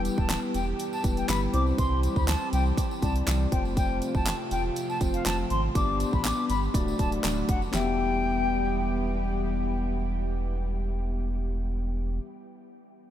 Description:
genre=dance-pop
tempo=121 BPM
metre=4/4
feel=straight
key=E phrygian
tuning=A4 = 440 Hz
part: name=mellow tine electric piano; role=accompaniment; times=0.0-12.2 s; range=G3 to E5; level=-33 LUFS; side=left 3 dB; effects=sidechain pumping
part: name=chorused pulse-width pad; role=sustained chords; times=0.0-12.2 s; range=C3 to G4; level=-34 LUFS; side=equal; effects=sidechain pumping
part: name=warm sub bass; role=bass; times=0.0-12.2 s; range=D1 to D2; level=-29 LUFS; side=right 1 dB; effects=sidechain pumping
part: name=pop drum kit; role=drums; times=0.1-7.9 s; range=handclaps, hi-hat, kick drum, snare drum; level=-30 LUFS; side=equal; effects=none
part: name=tambourine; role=percussion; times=0.1-8.0 s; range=none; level=-45 LUFS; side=right 3 dB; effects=none
part: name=silver concert flute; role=melody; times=0.2-9.2 s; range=F5 to D6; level=-32 LUFS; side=left 3 dB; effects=diffuse ambient delay
room=moderate huge ambient reverb, RT60 9.4 s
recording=dreamy mix soaked in reverb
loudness=-25 LUFS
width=side -11 dB against mid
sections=0.0-7.7 A section; 7.7-11.7 B section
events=drop 0.0-7.7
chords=0.0 Em; 1.5 C; 3.5 F; 5.8 G; 6.7 D; 7.7 Em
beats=0.30 0.79 1.29 | 1.78 2.28 2.78 3.27 | 3.77 4.26 4.76 5.26 | 5.75 6.25 6.74 7.24 | 7.74 8.23 8.73 9.22 | 9.72 10.21 10.71 11.21

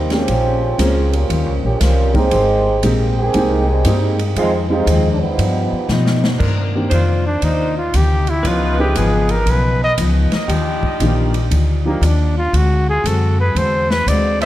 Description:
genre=jazz, big band swing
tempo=117 BPM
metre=4/4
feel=swing 66% on 8ths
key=C minor from 6.4 s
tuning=A4 = 440 Hz
part: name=muted trombone section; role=second line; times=0.0-6.2 s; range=Eb3 to C5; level=-19 LUFS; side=right 2 dB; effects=diffuse ambient delay
part: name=picked steel-string acoustic guitar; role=accompaniment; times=0.0-14.4 s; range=F2 to C5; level=-22 LUFS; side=left 4 dB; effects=none
part: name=upright bass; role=bass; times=0.0-14.5 s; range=Ab1 to B2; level=-17 LUFS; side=equal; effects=none
part: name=warm upright piano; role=accompaniment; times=0.1-12.0 s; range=Eb3 to Bb4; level=-22 LUFS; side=right 1 dB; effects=none
part: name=swinging big-band drum kit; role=drums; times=0.1-14.5 s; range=crash cymbal, hi-hat, kick drum, ride cymbal, snare drum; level=-26 LUFS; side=equal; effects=none
part: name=clear saxophone section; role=sustained chords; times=6.4-14.5 s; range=Eb3 to C5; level=-24 LUFS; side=equal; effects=none
part: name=breathy trumpet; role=melody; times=6.9-14.5 s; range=Bb3 to E5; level=-19 LUFS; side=equal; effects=diffuse ambient delay
room=moderate plate reverb, RT60 1.8 s, small room ambience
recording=dreamy mix soaked in reverb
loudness=-14 LUFS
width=side -14 dB against mid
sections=0.0-6.4 A section; 6.4-14.5 B section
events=trombone section solo 0.0-6.4; drum fill 5.9-6.4; trumpet solo 6.4-14.5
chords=0.3 Bbm9; 1.3 Eb13; 2.3 Abmaj7; 4.4 Fm7; 5.4 G7b13; 6.4 Cm9; 8.4 Db9; 10.5 Ebmaj9; 12.5 D7#11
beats=| 0.28 0.79 1.30 1.81 | 2.32 2.83 3.34 3.85 | 4.36 4.87 5.38 5.89 | 6.40 6.92 7.43 7.94 | 8.45 8.96 9.47 9.98 | 10.49 11.01 11.52 12.03 | 12.54 13.05 13.56 14.07

